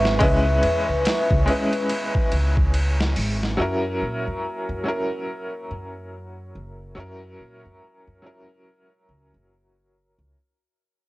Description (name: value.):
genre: trip hop.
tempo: 71 BPM.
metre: 4/4.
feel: swing 60% on 16ths.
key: unclear.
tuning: A4 = 441 Hz.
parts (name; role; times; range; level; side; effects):
bright upright piano; accompaniment; 0.0-10.4 s; F#3 to B4; -26 LUFS; equal; tremolo, cassette tape, tape echo.
dark analog pad; sustained chords; 0.0-10.3 s; A#4 to E6; -27 LUFS; equal; chorus, phaser, cassette tape.
upright bass; bass; 0.0-10.3 s; F#1 to A#2; -24 LUFS; equal; tube saturation.
boom bap sampler-style drum kit; drums; 0.1-3.6 s; hi-hat, kick drum, ride cymbal, snare drum; -24 LUFS; equal; overdrive, cassette tape.
room: light reverb.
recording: home recording on cassette.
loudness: -20 LUFS.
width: side -19 dB against mid.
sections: 0.0-10.3 A section.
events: fade-out 0.0-10.3.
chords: 0.0 C#m7; 3.6 F#7.